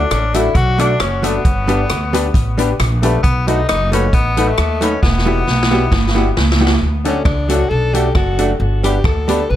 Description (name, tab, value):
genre	ska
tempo	134 BPM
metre	4/4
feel	swing 54% on 8ths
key	D major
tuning	A4 = 441 Hz
part	warm tenor saxophone	melody	0.0-6.6 s	A3 to F#4	-21 LUFS	left 3 dB	dub echo
part	warm upright piano	stabs	0.0-9.4 s	D4 to B4	-22 LUFS	left 4 dB	dub echo
part	upright bass	bass	0.0-9.6 s	E1 to D#2	-17 LUFS	equal	none
part	swinging big-band drum kit	drums	0.1-9.4 s	hi-hat, kick drum, rim click, snare drum	-18 LUFS	equal	none
part	hollow-body jazz guitar	accompaniment	0.3-9.4 s	F#3 to G4	-22 LUFS	right 3 dB	dub echo
part	breathy alto saxophone	melody	7.1-9.6 s	C#4 to B4	-20 LUFS	left 2 dB	dub echo
room	small room ambience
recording	none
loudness	-13 LUFS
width	side -12 dB against mid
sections	0.0-6.8 A section; 6.8-9.6 B section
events	drum fill 5.0-6.8; alto saxophone solo 6.8-9.6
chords	0.0 D; 1.5 G; 3.2 B7; 5.0 Emadd9; 6.8 D; 8.6 G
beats	0.11 0.56 1.00 | 1.45 1.90 2.34 2.79 | 3.24 3.68 4.13 4.58 | 5.02 5.47 5.92 6.36 | 6.81 7.25 7.70 8.15 | 8.60 9.04 9.49